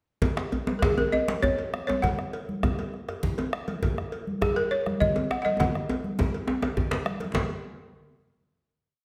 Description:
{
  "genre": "west african traditional, West African drum ensemble",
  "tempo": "135 BPM (dotted quarters)",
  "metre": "12/8",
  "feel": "straight",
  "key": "F# major pentatonic",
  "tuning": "A4 = 438 Hz",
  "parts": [
    { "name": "bombo", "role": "percussion", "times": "0.2-7.5 s", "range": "none", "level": "-34 LUFS", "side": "equal", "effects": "none" },
    { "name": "congas", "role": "percussion", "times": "0.2-7.5 s", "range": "none", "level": "-35 LUFS", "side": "equal", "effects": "none" },
    { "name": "cowbell", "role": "percussion", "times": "0.2-7.5 s", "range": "none", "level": "-41 LUFS", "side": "equal", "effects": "none" },
    { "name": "djembe", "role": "percussion", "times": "0.2-7.5 s", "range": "none", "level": "-36 LUFS", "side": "equal", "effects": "none" },
    { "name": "djembe", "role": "percussion", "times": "0.2-7.5 s", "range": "none", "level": "-33 LUFS", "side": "equal", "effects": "none" },
    { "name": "balafon", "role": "melody", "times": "0.8-7.0 s", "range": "G#4 to F#5", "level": "-29 LUFS", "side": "equal", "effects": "none" }
  ],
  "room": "wet recital hall reverb, RT60 1.2 s",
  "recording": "none",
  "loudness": "-27 LUFS",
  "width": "mono",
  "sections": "0.2-7.3 A section; 7.3-9.0 final hit",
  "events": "speeding up 0.2-9.0; drum fill 5.6-7.3",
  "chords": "none",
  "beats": "| 0.22 0.67 1.13 1.58 | 2.03 2.48 2.94 3.38 | 3.83 4.28 4.72 5.16 | 5.60 6.04 6.48 6.91 | 7.35"
}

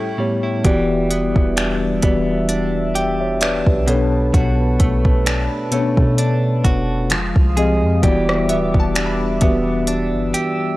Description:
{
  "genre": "contemporary R&B",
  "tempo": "65 BPM",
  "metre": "4/4",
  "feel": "swing 54% on 16ths",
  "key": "unclear",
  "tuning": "A4 = 439 Hz",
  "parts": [
    { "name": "chorused pulse-width pad", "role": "sustained chords", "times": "0.0-10.8 s", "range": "G3 to E6", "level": "-27 LUFS", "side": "equal", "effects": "none" },
    { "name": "direct-recorded clean electric guitar", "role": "arpeggios", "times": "0.0-10.8 s", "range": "A2 to Ab4", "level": "-24 LUFS", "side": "right 2 dB", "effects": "harmonic tremolo" },
    { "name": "mellow tine electric piano", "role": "accompaniment", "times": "0.2-10.8 s", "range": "A2 to G5", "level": "-19 LUFS", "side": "left 1 dB", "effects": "slow stereo tremolo" },
    { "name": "warm 808-style bass", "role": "bass", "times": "0.6-10.3 s", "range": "D1 to B2", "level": "-22 LUFS", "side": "equal", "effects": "none" },
    { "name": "smooth R&B drum kit", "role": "drums", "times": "0.6-10.6 s", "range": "finger snaps, hi-hat, kick drum, rim click", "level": "-18 LUFS", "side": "equal", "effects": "overdrive" },
    { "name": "glassy wavetable pluck", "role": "texture", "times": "8.5-10.8 s", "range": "E5 to B5", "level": "-28 LUFS", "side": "right 2 dB", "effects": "chorus, tape echo" }
  ],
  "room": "little or no reverb",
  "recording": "dry, gritty hardware recording, cassette tape",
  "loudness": "-15 LUFS",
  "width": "side -18 dB against mid",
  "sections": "0.6-10.8 A section",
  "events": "break 0.0-0.6",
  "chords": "0.0 A7; 0.6 Em7; 3.9 Bm7; 7.1 Fm7; 8.0 Em7",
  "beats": "| 0.65 1.57 2.49 3.42 | 4.34 5.26 6.18 7.11 | 8.03 8.95 9.88"
}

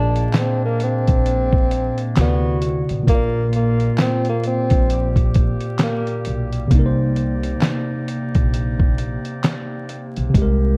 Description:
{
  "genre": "lo-fi hip hop",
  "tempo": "66 BPM",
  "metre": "4/4",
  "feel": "swing 59% on 16ths",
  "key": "C minor",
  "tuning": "A4 = 438 Hz",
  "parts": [
    { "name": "mellow tenor saxophone", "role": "melody", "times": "0.0-6.2 s", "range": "Bb3 to D4", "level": "-26 LUFS", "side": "equal", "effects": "low-pass filter, analog delay" },
    { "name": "tine electric piano", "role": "accompaniment", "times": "0.0-10.8 s", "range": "Bb2 to D5", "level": "-24 LUFS", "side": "equal", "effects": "low-pass filter" },
    { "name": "warm woodwind section", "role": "sustained chords", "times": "0.0-10.8 s", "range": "C3 to D5", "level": "-34 LUFS", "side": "equal", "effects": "low-pass filter" },
    { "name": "upright bass", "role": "bass", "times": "0.0-10.8 s", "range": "A1 to D2", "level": "-24 LUFS", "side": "equal", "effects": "none" },
    { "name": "lo-fi sampler-style drum kit", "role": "drums", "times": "0.2-10.6 s", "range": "handclaps, hi-hat, kick drum, snare drum", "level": "-21 LUFS", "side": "equal", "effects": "none" }
  ],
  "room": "studio reverb",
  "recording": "dark, warm production, vinyl crackle",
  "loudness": "-19 LUFS",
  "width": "mono",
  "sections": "0.0-10.8 A section",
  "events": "none",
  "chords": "0.0 Bb7; 2.2 D7; 3.1 Gm7/Bb; 6.7 Cm7",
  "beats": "0.35 1.26 2.17 | 3.08 3.99 4.90 5.80 | 6.71 7.62 8.53 9.44 | 10.35"
}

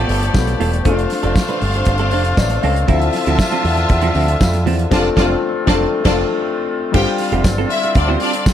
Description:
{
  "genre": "disco",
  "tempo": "118 BPM",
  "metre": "4/4",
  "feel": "straight",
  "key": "unclear",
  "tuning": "A4 = 442 Hz",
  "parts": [
    { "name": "clear studio string section", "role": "second line", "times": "0.0-8.4 s", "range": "B3 to A5", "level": "-22 LUFS", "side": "equal", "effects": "none" },
    { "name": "clean electric guitar", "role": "accompaniment", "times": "0.0-8.5 s", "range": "F3 to B4", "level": "-23 LUFS", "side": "right 8 dB", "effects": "lush chorus" },
    { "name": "warm baby grand piano", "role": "accompaniment", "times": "0.0-8.5 s", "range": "D3 to F5", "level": "-22 LUFS", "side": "left 8 dB", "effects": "none" },
    { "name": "mellow woodwind section", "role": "sustained chords", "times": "0.0-8.5 s", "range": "D3 to E5", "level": "-23 LUFS", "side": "left 2 dB", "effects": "none" },
    { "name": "picked electric bass with an envelope filter", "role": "bass", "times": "0.0-8.2 s", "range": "E1 to F2", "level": "-18 LUFS", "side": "equal", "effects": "none" },
    { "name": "damped 70s drum kit", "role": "drums", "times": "0.1-8.5 s", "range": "crash cymbal, hi-hat, kick drum, snare drum", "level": "-19 LUFS", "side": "right 1 dB", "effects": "gated reverb" },
    { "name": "tambourine", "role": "percussion", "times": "0.3-8.5 s", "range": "none", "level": "-33 LUFS", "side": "left 6 dB", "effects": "none" }
  ],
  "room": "light reverb, small room ambience",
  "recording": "none",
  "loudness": "-14 LUFS",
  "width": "side -10 dB against mid",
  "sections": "0.0-6.9 A section; 6.9-8.5 B section",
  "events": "grand piano fill 1.9-2.9; band accent 4.9-6.9",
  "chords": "0.0 G9; 0.9 F6; 2.9 Dm9; 4.9 F6; 6.9 G7sus4",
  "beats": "0.35 | 0.85 1.36 1.87 2.38 | 2.88 3.39 3.90 4.41 | 4.91 5.42 5.93 6.43 | 6.94 7.45 7.96 8.46"
}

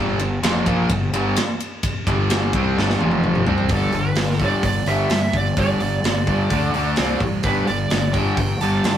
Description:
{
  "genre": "hard rock",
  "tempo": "128 BPM",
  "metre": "4/4",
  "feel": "straight",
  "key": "unclear",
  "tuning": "A4 = 440 Hz",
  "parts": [
    { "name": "high-gain distorted guitar", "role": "riff", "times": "0.0-9.0 s", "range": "F2 to D4", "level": "-26 LUFS", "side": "right 4 dB", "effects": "distortion" },
    { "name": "overdriven semi-hollow guitar", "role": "riff", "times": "0.0-9.0 s", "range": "F2 to D4", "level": "-23 LUFS", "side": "left 3 dB", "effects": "none" },
    { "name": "fuzz fingered electric bass", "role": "bass", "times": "0.0-9.0 s", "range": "F1 to G2", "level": "-24 LUFS", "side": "equal", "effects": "overdrive" },
    { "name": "tight metal drum kit", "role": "drums", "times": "0.2-9.0 s", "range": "hi-hat, kick drum, ride cymbal, snare drum, toms", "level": "-23 LUFS", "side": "equal", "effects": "none" },
    { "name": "smooth overdriven lead guitar", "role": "melody", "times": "3.8-9.0 s", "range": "A4 to A5", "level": "-25 LUFS", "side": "right 3 dB", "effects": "none" }
  ],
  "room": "wet small room reverb, RT60 0.5 s",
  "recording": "rough rehearsal-room recording, tube saturation",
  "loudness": "-17 LUFS",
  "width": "side -10 dB against mid",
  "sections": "0.0-3.7 A section; 3.7-9.0 B section",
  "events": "drum fill 2.8-3.7",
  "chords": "0.0 G5; 3.0 F5; 3.5 C5; 3.7 G5; 6.5 D5; 7.0 C5; 7.4 G5",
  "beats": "0.43 0.90 1.37 | 1.84 2.30 2.77 3.24 | 3.70 4.17 4.64 5.10 | 5.57 6.04 6.50 6.97 | 7.44 7.90 8.37 8.84"
}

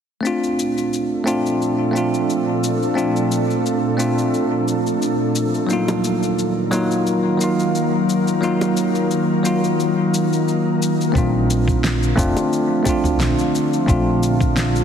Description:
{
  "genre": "sunset chillout",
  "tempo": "88 BPM",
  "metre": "4/4",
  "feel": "swing 54% on 16ths",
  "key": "Bb major",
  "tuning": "A4 = 445 Hz",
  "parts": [
    { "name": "bell-like tine electric piano", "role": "accompaniment", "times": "0.2-14.8 s", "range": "Gb3 to F4", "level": "-19 LUFS", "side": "equal", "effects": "auto-pan, low-pass filter, ping-pong delay" },
    { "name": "ethereal airy pad", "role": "sustained chords", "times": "0.7-14.8 s", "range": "Bb2 to Bb4", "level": "-22 LUFS", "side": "left 1 dB", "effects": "ensemble chorus, built-in reverb" },
    { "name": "electronic shaker and snare drum", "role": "drums", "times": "0.3-14.8 s", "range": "none", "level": "-28 LUFS", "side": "left 2 dB", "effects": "none" },
    { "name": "bongos", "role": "percussion", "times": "5.9-13.0 s", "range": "none", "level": "-31 LUFS", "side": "equal", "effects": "none" },
    { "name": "upright bass", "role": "bass", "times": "11.2-14.8 s", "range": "F1 to D2", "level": "-20 LUFS", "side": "equal", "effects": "none" },
    { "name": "electronic kick drum", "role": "drums", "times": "11.2-14.5 s", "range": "none", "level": "-20 LUFS", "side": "equal", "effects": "none" }
  ],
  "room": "wet lush hall reverb, RT60 2.5 s",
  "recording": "heavily compressed radio sound, multiband compression",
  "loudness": "-16 LUFS",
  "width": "side -8 dB against mid",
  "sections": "0.2-11.2 A section; 11.2-14.8 B section",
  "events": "none",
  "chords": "0.2 Bbmaj7; 5.7 Ebmadd9; 11.2 Bbmaj7",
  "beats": "| 0.24 0.93 1.61 2.29 | 2.97 3.65 4.33 5.02 | 5.70 6.38 7.06 7.74 | 8.43 9.11 9.79 10.47 | 11.15 11.84 12.52 13.20 | 13.88 14.56"
}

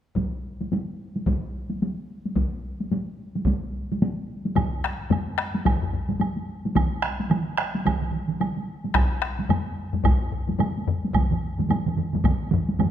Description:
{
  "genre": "japanese traditional, taiko drum ensemble",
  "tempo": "109 BPM",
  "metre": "4/4",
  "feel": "swing 60% on 16ths",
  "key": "none",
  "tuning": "none",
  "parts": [
    { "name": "taiko ensemble", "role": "percussion", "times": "0.2-12.9 s", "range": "none", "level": "-27 LUFS", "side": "equal", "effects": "none" },
    { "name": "taiko ensemble", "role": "percussion", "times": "0.2-12.4 s", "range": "none", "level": "-27 LUFS", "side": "equal", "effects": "none" },
    { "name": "taiko ensemble", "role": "percussion", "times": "4.6-12.9 s", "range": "none", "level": "-28 LUFS", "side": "left 5 dB", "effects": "none" },
    { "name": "woodblock", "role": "percussion", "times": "4.6-12.9 s", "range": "none", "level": "-33 LUFS", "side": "right 6 dB", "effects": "none" },
    { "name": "taiko ensemble", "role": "percussion", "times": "6.8-12.9 s", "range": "none", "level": "-26 LUFS", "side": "right 5 dB", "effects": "none" }
  ],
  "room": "wet recital hall reverb, RT60 1.8 s",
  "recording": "none",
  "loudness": "-23 LUFS",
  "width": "side -10 dB against mid",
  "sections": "0.2-4.6 A section; 4.6-12.9 B section",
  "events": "none",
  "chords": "none",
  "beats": "| 0.16 0.71 1.26 1.81 | 2.36 2.91 3.46 4.01 | 4.56 5.11 5.66 6.21 | 6.75 7.30 7.85 8.40 | 8.95 9.50 10.04 10.59 | 11.14 11.68 12.23 12.78"
}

